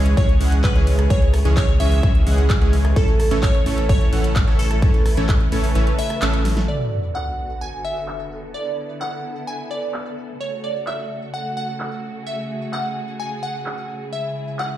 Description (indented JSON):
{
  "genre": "EDM, festival progressive house",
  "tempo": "129 BPM",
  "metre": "4/4",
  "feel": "straight",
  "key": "unclear",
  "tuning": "A4 = 440 Hz",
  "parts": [
    { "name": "glassy wavetable pluck", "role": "melody", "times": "0.0-14.7 s", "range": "A4 to G#5", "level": "-27 LUFS", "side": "right 1 dB", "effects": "chorus, digital delay" },
    { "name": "warm symphonic string section", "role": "sustained chords", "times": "0.0-14.8 s", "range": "C#3 to B4", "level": "-31 LUFS", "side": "equal", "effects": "sidechain pumping, low-pass filter" },
    { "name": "supersaw stab", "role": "riff", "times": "0.0-6.7 s", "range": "E3 to F#5", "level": "-24 LUFS", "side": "right 2 dB", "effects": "sidechain pumping, low-pass filter, digital delay" },
    { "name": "saturated sub bass", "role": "bass", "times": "0.0-6.7 s", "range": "A1 to C#2", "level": "-19 LUFS", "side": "equal", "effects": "sidechain pumping" },
    { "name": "big-room dance drum kit", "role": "drums", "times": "0.1-14.7 s", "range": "handclaps, hi-hat, rim click, snare drum", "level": "-30 LUFS", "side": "equal", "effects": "low-pass filter on hats, low-pass filter on snare, low-pass filter on room" },
    { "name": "electronic kick drum", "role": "drums", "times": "0.2-5.4 s", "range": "none", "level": "-18 LUFS", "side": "equal", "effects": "overdrive" },
    { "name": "sub drop", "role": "sound effects", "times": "6.7-8.5 s", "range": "none", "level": "-28 LUFS", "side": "equal", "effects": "none" }
  ],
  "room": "little or no reverb",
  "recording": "played on a big sound system in a bare room, stone room reverb",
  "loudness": "-18 LUFS",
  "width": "side -13 dB against mid",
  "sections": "0.0-6.7 A section; 6.7-14.8 B section",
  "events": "drop 0.0-6.7; kick drops out 5.8-6.7; band accent 6.2; drum fill 6.5; impact 6.7-8.5; filter sweep on string section 6.7-14.8",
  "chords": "0.0 C#m; 3.0 A; 6.7 Bm7; 10.4 F#m; 14.1 C#m"
}